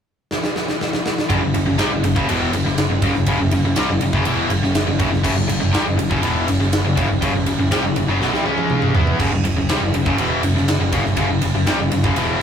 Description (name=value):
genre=hard rock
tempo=122 BPM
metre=4/4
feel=straight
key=unclear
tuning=A4 = 445 Hz
part: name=big rock drum kit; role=drums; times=0.3-12.3 s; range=crash cymbal, kick drum, ride cymbal, snare drum, toms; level=-21 LUFS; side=right 1 dB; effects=none
part: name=distorted electric guitar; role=riff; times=1.3-12.4 s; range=E2 to E4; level=-24 LUFS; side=right 2 dB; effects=overdrive
part: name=overdriven electric guitar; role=riff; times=1.3-12.4 s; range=E2 to E4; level=-22 LUFS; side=left 1 dB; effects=none
part: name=tight distorted guitar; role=riff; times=1.3-12.4 s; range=E2 to E4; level=-23 LUFS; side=left 4 dB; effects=distortion
part: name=growling picked electric bass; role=bass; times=1.3-12.4 s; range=E1 to E2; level=-23 LUFS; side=equal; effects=overdrive
room=moderate booth ambience, RT60 0.3 s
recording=rough rehearsal-room recording, tube saturation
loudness=-16 LUFS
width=side -8 dB against mid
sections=0.0-1.3 A section; 1.3-12.4 B section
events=drum fill 0.3-1.3, 8.2-9.2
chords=0.0 N.C.; 1.3 F#5; 8.5 C#5; 8.9 F#5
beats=0.31 0.80 | 1.30 1.79 2.29 2.78 | 3.27 3.77 4.26 4.75 | 5.25 5.74 6.23 6.73 | 7.22 7.71 8.21 8.70 | 9.20 9.69 10.18 10.68 | 11.17 11.67 12.16